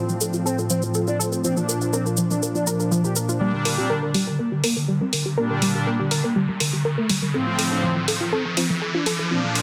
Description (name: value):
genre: melodic techno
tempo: 122 BPM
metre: 4/4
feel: straight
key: G minor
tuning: A4 = 438 Hz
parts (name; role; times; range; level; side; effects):
- expressive synth lead; melody; 0.0-9.6 s; D3 to G4; -29 LUFS; equal; ensemble chorus, digital delay
- analog pluck; arpeggios; 0.0-9.6 s; F3 to Bb4; -28 LUFS; equal; chorus, digital delay
- brassy analog pad; stabs; 0.0-9.6 s; A2 to D4; -28 LUFS; equal; chorus, digital delay
- cabasa; percussion; 0.1-3.4 s; none; -30 LUFS; equal; none
- riser; sound effects; 5.1-9.6 s; none; -32 LUFS; equal; none
- electronic hi-hat; drums; 3.7-9.6 s; none; -27 LUFS; equal; overdrive
room: light reverb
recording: dense, heavily limited modern master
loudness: -22 LUFS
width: mono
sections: 0.0-3.4 A section; 3.4-9.6 B section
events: build-up 3.4-9.6; filter sweep on synth pluck 3.4-9.6; riser 5.1-9.6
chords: 0.0 F; 1.4 Bb; 3.4 Gm; 7.3 F